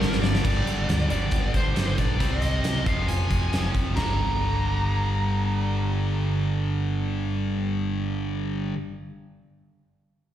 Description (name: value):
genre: hard rock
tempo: 136 BPM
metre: 4/4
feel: straight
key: G minor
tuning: A4 = 440 Hz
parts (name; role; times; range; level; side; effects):
- dark smooth lead guitar; melody; 0.0-8.3 s; Bb4 to Bb5; -31 LUFS; equal; overdrive, slapback echo
- high-gain distorted guitar; riff; 0.0-8.8 s; F2 to C4; -31 LUFS; left 8 dB; distortion
- overdriven electric guitar; riff; 0.0-8.8 s; F2 to C4; -31 LUFS; right 7 dB; spring reverb, slapback echo
- fingered electric bass; bass; 0.0-8.7 s; F1 to D2; -26 LUFS; equal; none
- huge arena drum kit; drums; 0.0-4.1 s; china cymbal, crash cymbal, hi-hat, kick drum, snare drum, toms; -27 LUFS; equal; none
room: studio ambience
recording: live gig heard through the venue's PA, recital hall reverb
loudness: -22 LUFS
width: side -11 dB against mid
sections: 0.4-4.0 A section; 4.0-7.5 B section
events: drum fill 0.0-0.4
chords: 0.4 Gm; 2.2 Cm; 2.9 Fm; 4.0 Gm